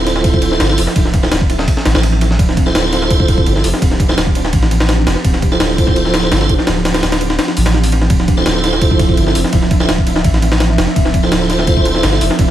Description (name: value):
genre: drum and bass, jungle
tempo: 168 BPM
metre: 4/4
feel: straight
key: D minor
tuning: A4 = 440 Hz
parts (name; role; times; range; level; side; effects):
- ethereal airy pad; sustained chords; 0.0-12.5 s; F3 to E5; -20 LUFS; right 1 dB; ensemble chorus, built-in reverb
- tonewheel organ; stabs; 0.0-12.3 s; E4 to C5; -18 LUFS; right 2 dB; overdrive, chorus vibrato, slow rotary speaker, analog delay
- soft dub sub bass; bass; 0.0-12.5 s; D1 to A1; -17 LUFS; equal; none
- breakbeat sampler-style drum kit; drums; 0.1-12.5 s; hi-hat, kick drum, ride cymbal, snare drum; -14 LUFS; equal; small room reverb, analog delay
room: moderate echo chamber reverb, RT60 1.3 s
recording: echo-heavy mix, vinyl crackle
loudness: -11 LUFS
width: side -12 dB against mid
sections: 0.0-12.5 A section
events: none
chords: 0.0 Dm9